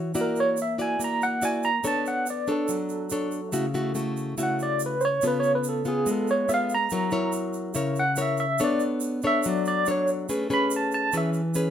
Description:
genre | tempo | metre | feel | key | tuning
bossa nova | 142 BPM | 4/4 | straight | A major | A4 = 441 Hz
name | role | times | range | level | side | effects
nylon-string guitar | accompaniment | 0.0-11.7 s | C#3 to D5 | -26 LUFS | left 1 dB | none
egg shaker | percussion | 0.1-11.7 s | none | -37 LUFS | right 7 dB | none
barky tine electric piano | melody | 0.2-11.3 s | G#4 to B5 | -25 LUFS | right 1 dB | medium tremolo
room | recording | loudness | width
moderate studio reverb, RT60 0.9 s | minimal, uncompressed stereo recording | -23 LUFS | side -9 dB against mid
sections
0.0-11.7 A section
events
tine electric piano solo 0.0-11.7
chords
0.2 F#7b13/A#; 1.8 Bm9; 3.5 A6/C#; 5.2 C#7b13; 6.9 F#7; 8.6 Bm9; 10.3 Amaj9

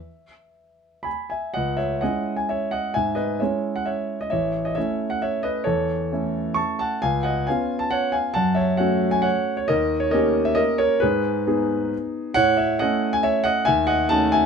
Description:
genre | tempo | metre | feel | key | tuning
classical, piano waltz | 118-142 BPM | 3/4 | rubato | unclear | A4 = 440 Hz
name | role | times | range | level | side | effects
warm grand piano | solo | 0.0-14.5 s | A1 to C#6 | -20 LUFS | equal | none
room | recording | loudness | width
light reverb | none | -20 LUFS | side -6 dB against mid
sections
0.0-1.6 A section; 1.6-14.5 B section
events
none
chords
0.0 E; 1.6 C#m; 4.3 A; 7.0 C#7; 8.4 F#m; 9.7 D#7; 11.0 G#m; 12.4 A; 13.7 D#m7b5

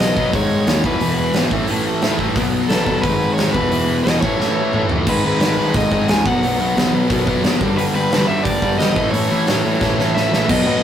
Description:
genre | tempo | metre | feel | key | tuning
punk rock | 177 BPM | 4/4 | straight | unclear | A4 = 440 Hz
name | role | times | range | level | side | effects
overdriven electric guitar | melody | 0.0-10.8 s | A4 to G#5 | -22 LUFS | left 1 dB | none
distorted electric guitar | riff | 0.0-10.8 s | E2 to B3 | -22 LUFS | right 4 dB | distortion
sludgy distorted guitar | riff | 0.0-10.8 s | E2 to B3 | -20 LUFS | left 4 dB | overdrive
fuzz picked electric bass | bass | 0.0-10.8 s | E1 to D#2 | -25 LUFS | equal | overdrive
big rock drum kit | drums | 0.0-10.6 s | crash cymbal, hi-hat, kick drum, snare drum, toms | -20 LUFS | right 1 dB | none
room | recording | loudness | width
moderate studio reverb, RT60 0.6 s | rough rehearsal-room recording, warm saturation | -15 LUFS | side -9 dB against mid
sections
0.0-5.1 A section; 5.1-10.5 B section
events
drum fill 4.4-5.1, 9.8-10.5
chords
0.3 G#5; 0.8 E; 1.5 A5; 2.4 B5; 3.0 G#m; 3.5 E5; 4.2 A; 5.1 G#m; 6.3 B5; 7.6 G; 9.0 A

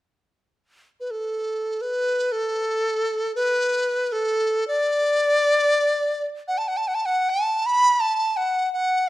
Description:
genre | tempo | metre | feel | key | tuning
chinese traditional | free time | none | none | unclear | A4 = 440 Hz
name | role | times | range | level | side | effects
dizi | melody | 1.0-9.1 s | A4 to B5 | -20 LUFS | equal | none
room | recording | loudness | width
moderate recital hall reverb, RT60 1.7 s | none | -20 LUFS | side -16 dB against mid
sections
0.3-7.3 A section; 7.3-9.1 B section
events
none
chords
none

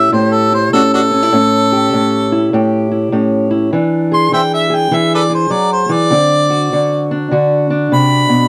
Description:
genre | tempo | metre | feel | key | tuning
acoustic country blues, solo or duo | 100 BPM | 4/4 | swing 63% on 8ths | unclear | A4 = 440 Hz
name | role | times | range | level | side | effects
warm harmonica | melody | 0.0-8.5 s | D4 to C6 | -16 LUFS | equal | none
fingerpicked steel-string acoustic guitar | accompaniment | 0.0-8.5 s | A2 to G#4 | -15 LUFS | equal | none
room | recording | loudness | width
light reverb | dry, close 1970s-style studio recording | -13 LUFS | mono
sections
0.0-8.5 A section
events
none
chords
0.0 A7; 3.7 E7; 6.1 D7

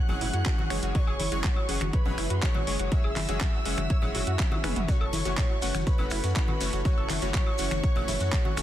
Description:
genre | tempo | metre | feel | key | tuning
progressive house | 122 BPM | 4/4 | straight | F# minor | A4 = 440 Hz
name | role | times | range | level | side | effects
warm velvety synth lead | melody | 0.0-8.6 s | B4 to F#5 | -36 LUFS | right 1 dB | chorus, sidechain pumping, dub echo
dark studio violin section | second line | 0.0-8.6 s | B5 to F#6 | -40 LUFS | left 2 dB | sidechain pumping, dub echo
evolving wavetable pad | sustained chords | 0.1-8.6 s | F#3 to A4 | -40 LUFS | equal | chorus, built-in reverb, sidechain pumping
wide unison pluck | arpeggios | 0.0-8.6 s | F#3 to F#6 | -38 LUFS | right 2 dB | sidechain pumping, dub echo
supersaw stab | stabs | 0.1-8.6 s | E3 to F#5 | -35 LUFS | left 2 dB | sidechain pumping
round analog bass | bass | 0.1-8.6 s | F#1 to F#2 | -31 LUFS | equal | sidechain pumping
congas and woodblock | percussion | 0.1-8.5 s | none | -37 LUFS | left 3 dB | sidechain pumping on perc
pop drum kit | drums | 0.2-8.6 s | finger snaps, handclaps, hi-hat, toms | -34 LUFS | right 1 dB | soft clipping on snare
electronic kick drum | drums | 0.5-8.4 s | none | -26 LUFS | equal | none
shekere | percussion | 4.9-8.6 s | none | -41 LUFS | left 3 dB | none
drifting glass-harmonics texture | texture | 5.6-8.6 s | F#5 to F#6 | -47 LUFS | right 4 dB | none
room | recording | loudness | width
little or no reverb | dense, heavily limited modern master | -24 LUFS | side -12 dB against mid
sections
0.0-8.6 A section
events
drum fill 4.4-4.9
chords
0.0 C#m/F#; 4.9 F#m7

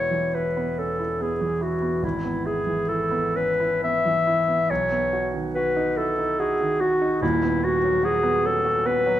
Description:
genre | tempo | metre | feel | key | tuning
classical, romantic duo for clarinet and grand piano | 61-74 BPM | 3/4 | rubato | E major | A4 = 440 Hz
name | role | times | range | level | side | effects
clear clarinet | melody | 0.0-9.2 s | E4 to E5 | -22 LUFS | left 2 dB | none
clear grand piano | accompaniment | 0.0-9.2 s | D#1 to F#4 | -26 LUFS | right 3 dB | none
room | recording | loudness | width
wet recital hall reverb, RT60 1.6 s | none | -21 LUFS | side -12 dB against mid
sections
0.0-9.2 A section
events
none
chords
0.0 E5; 2.0 E/G#; 4.7 B; 7.2 B/D#

